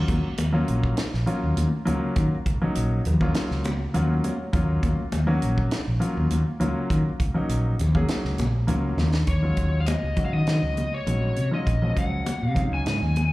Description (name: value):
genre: electric jazz fusion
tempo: 101 BPM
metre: 4/4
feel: straight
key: Eb minor, Eb dorian from 9.3 s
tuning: A4 = 440 Hz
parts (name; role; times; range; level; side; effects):
- warm grand piano; accompaniment; 0.0-13.1 s; F3 to Gb5; -27 LUFS; equal; slapback echo
- mellow fretless electric bass; bass; 0.0-13.3 s; Bb1 to Eb3; -24 LUFS; equal; none
- tight funk drum kit; drums; 0.1-13.3 s; hi-hat, kick drum, snare drum; -28 LUFS; equal; none
- congas; percussion; 0.1-13.3 s; none; -32 LUFS; left 2 dB; none
- lead guitar through a small cranked amp; melody; 9.3-13.3 s; Db5 to Ab5; -30 LUFS; left 3 dB; overdrive, slapback echo
room: studio reverb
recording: live gig heard through the venue's PA, club reverb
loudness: -21 LUFS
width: side -18 dB against mid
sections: 0.0-9.3 A section; 9.3-13.3 B section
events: grand piano fill 3.6-4.5; drum fill 9.0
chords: 0.0 Ebm9; 9.3 Ebm11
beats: 0.38 0.98 1.57 | 2.16 2.76 3.35 3.94 | 4.53 5.13 5.72 6.31 | 6.91 7.50 8.09 8.69 | 9.28 9.88 10.47 11.07 | 11.66 12.26 12.86